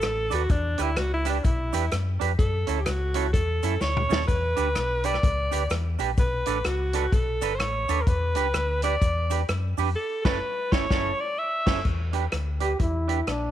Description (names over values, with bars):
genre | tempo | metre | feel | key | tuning
ska | 127 BPM | 4/4 | swing 61% on 8ths | E dorian | A4 = 439 Hz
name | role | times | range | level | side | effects
bright alto saxophone | melody | 0.0-11.9 s | D4 to E5 | -28 LUFS | equal | none
semi-hollow electric guitar | accompaniment | 0.0-13.2 s | C#4 to B4 | -31 LUFS | right 13 dB | wide subtle chorus
fingered electric bass | bass | 0.0-13.5 s | F#1 to F#2 | -28 LUFS | left 1 dB | none
vintage drum kit | drums | 0.0-13.4 s | crash cymbal, hi-hat, kick drum, rim click, snare drum, toms | -26 LUFS | left 1 dB | none
cabasa | percussion | 0.0-9.9 s | none | -45 LUFS | left 17 dB | none
breathy trombone | melody | 12.6-13.5 s | D4 to G4 | -28 LUFS | equal | none
room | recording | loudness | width
light reverb, small room ambience | 1960s-style stereo with parts hard left and right | -23 LUFS | side -11 dB against mid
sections
0.0-11.8 A section; 11.8-13.5 B section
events
alto saxophone solo 0.0-11.8; drum fill 3.8-4.3; band accent 10.0-11.8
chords
0.5 Em7; 2.4 F#m7; 4.3 Em7; 6.2 Bm7; 8.1 Em7; 10.0 F#m7; 11.8 Em7